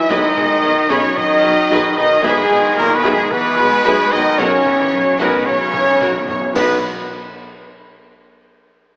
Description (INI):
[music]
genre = cinematic, epic orchestral film score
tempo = 112 BPM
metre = 4/4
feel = straight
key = B major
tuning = A4 = 436 Hz
[part]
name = clear symphonic violin section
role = melody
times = 0.0-6.9 s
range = G#4 to D#5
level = -21 LUFS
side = equal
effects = none
[part]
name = mellow hollow concert flute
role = second line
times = 0.0-6.9 s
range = G#4 to B5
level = -22 LUFS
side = equal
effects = none
[part]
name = clear trombone section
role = sustained chords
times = 0.0-6.8 s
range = G#2 to B3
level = -23 LUFS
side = equal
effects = none
[part]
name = mellow French horn section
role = sustained chords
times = 0.0-6.8 s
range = G#3 to D#4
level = -19 LUFS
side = equal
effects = none
[part]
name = warm trumpet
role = stabs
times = 0.0-6.8 s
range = G#4 to E5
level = -18 LUFS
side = equal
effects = none
[part]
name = rich symphonic cello section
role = bass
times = 0.0-6.9 s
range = B2 to G#3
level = -23 LUFS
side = equal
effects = none
[part]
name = rich symphonic violin section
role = second line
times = 0.1-6.9 s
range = F#4 to B5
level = -26 LUFS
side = equal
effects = none
[part]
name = rich studio viola section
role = accompaniment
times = 0.1-6.9 s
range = D#4 to B4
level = -23 LUFS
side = equal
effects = none
[part]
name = clear symphonic double bass section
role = bass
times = 0.1-6.9 s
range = B1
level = -31 LUFS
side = equal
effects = none
[part]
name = mellow tuba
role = bass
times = 0.1-6.8 s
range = B1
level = -26 LUFS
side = equal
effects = none
[part]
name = taiko ensemble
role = drums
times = 0.1-7.6 s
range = none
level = -31 LUFS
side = equal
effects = none
[part]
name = timpani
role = percussion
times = 0.1-6.8 s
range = B2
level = -31 LUFS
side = equal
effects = none
[part]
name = clash cymbals and concert bass drum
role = percussion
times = 6.6-7.6 s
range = none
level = -32 LUFS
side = equal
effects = none
[sound]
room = wet scoring stage reverb, RT60 2.2 s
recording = AM radio sound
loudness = -12 LUFS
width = side -30 dB against mid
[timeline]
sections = 0.0-6.6 A section; 6.6-8.7 B section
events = timpani fill 4.4-6.6; drum fill 5.7-6.6; band accent 6.6-7.1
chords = 0.1 G#m/B; 2.2 E/B; 4.4 F#/B; 6.6 B